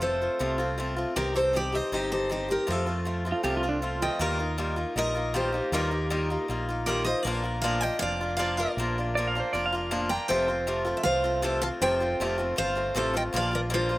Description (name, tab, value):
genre	honky-tonk and classic country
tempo	158 BPM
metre	4/4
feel	straight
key	Bb major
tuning	A4 = 440 Hz
part	picked steel-string acoustic guitar	melody	0.0-14.0 s	F4 to Bb5	-28 LUFS	equal	slapback echo
part	picked swing-style acoustic guitar	accompaniment	0.0-14.0 s	F2 to G4	-30 LUFS	left 1 dB	slapback echo
part	deep dub fingered electric bass	bass	0.0-14.0 s	F1 to F2	-33 LUFS	equal	none
part	pedal steel guitar	second line	3.3-4.1, 9.2-10.0 s	D4 to F5	-29 LUFS	right 2 dB	none
room	little or no reverb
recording	recorded outdoors, with no room sound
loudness	-25 LUFS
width	side -18 dB against mid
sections	0.0-4.2 A section; 4.2-14.0 B section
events	none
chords	0.0 F; 1.2 Cm; 2.7 F; 4.2 Ebadd9; 7.2 Bb; 10.3 F; 13.3 Bb